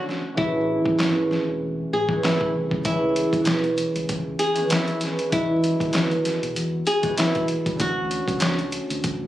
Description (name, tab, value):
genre	hip hop, boom-bap hip-hop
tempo	97 BPM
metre	4/4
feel	swing 56% on 16ths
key	C# minor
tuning	A4 = 437 Hz
part	flamenco guitar	melody	0.0-8.6 s	E4 to G#4	-24 LUFS	equal	high-pass filter, low-pass filter
part	concert harp	accompaniment	0.0-9.3 s	D3 to D#5	-26 LUFS	equal	cassette tape, high-pass filter, low-pass filter
part	trip hop sampler-style drum kit	drums	0.1-9.2 s	handclaps, hi-hat, kick drum, snare drum	-26 LUFS	equal	none
part	deep dub fingered electric bass	bass	0.4-9.3 s	E1 to E2	-31 LUFS	equal	none
room	light reverb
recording	recorded on a phone in the room, studio ambience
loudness	-20 LUFS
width	side -13 dB against mid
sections	0.0-9.3 A section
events	break 0.0-2.9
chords	0.4 Amaj9; 2.9 C#m7; 5.3 Emaj9; 7.8 Dmaj7